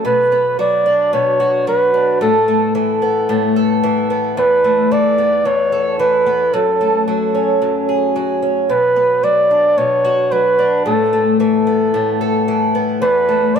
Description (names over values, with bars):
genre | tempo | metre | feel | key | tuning
folktronica | 111 BPM | 4/4 | swing 56% on 16ths | B minor | A4 = 440 Hz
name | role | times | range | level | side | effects
fingerpicked twelve-string acoustic guitar | arpeggios | 0.0-13.6 s | E2 to A4 | -17 LUFS | left 1 dB | tape echo
breathy flugelhorn | melody | 0.1-13.6 s | A4 to D5 | -14 LUFS | right 1 dB | tape echo
room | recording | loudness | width
moderate echo chamber reverb, RT60 1.8 s | none | -13 LUFS | side -7 dB against mid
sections
0.1-13.6 A section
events
none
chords
0.1 Bm; 2.2 Asus2; 4.4 Esus4; 6.5 F#madd9; 8.7 Bm; 10.9 Asus2; 13.0 Esus4